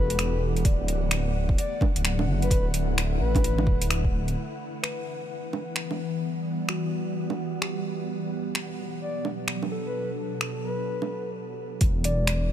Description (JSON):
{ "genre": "future garage", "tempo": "129 BPM", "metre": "4/4", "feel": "swing 62% on 16ths", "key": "E minor", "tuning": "A4 = 438 Hz", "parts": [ { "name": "breathy flute-like synth lead", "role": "melody", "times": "0.0-3.9, 9.0-11.3 s", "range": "B4 to D5", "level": "-35 LUFS", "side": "left 4 dB", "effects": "chorus, ping-pong delay" }, { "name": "mellow tine electric piano", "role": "accompaniment", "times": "0.0-12.5 s", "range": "F#4 to D5", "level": "-37 LUFS", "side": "left 1 dB", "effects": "sidechain pumping, tape echo" }, { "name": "ethereal airy pad", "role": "sustained chords", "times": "0.0-12.5 s", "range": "B2 to F#5", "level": "-32 LUFS", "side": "right 1 dB", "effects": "ensemble chorus, built-in reverb, sidechain pumping" }, { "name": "dark detuned saw bass", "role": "bass", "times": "0.0-4.4, 11.8-12.5 s", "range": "D1 to A1", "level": "-26 LUFS", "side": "equal", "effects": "sidechain pumping" }, { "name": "deep house drum kit", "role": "drums", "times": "0.1-12.4 s", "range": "bongos, finger snaps, hi-hat", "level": "-30 LUFS", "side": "right 2 dB", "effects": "overdrive" }, { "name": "electronic kick drum", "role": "drums", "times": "0.6-4.1, 11.8-11.9 s", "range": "none", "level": "-24 LUFS", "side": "equal", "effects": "overdrive" } ], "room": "light reverb, digital ambience", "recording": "none", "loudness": "-25 LUFS", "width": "side -11 dB against mid", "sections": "0.0-4.4 A section; 4.4-11.8 B section", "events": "stop 11.3-11.8", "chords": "0.0 Em; 0.6 Dadd9; 4.4 Em; 8.1 Bm7; 11.8 N.C." }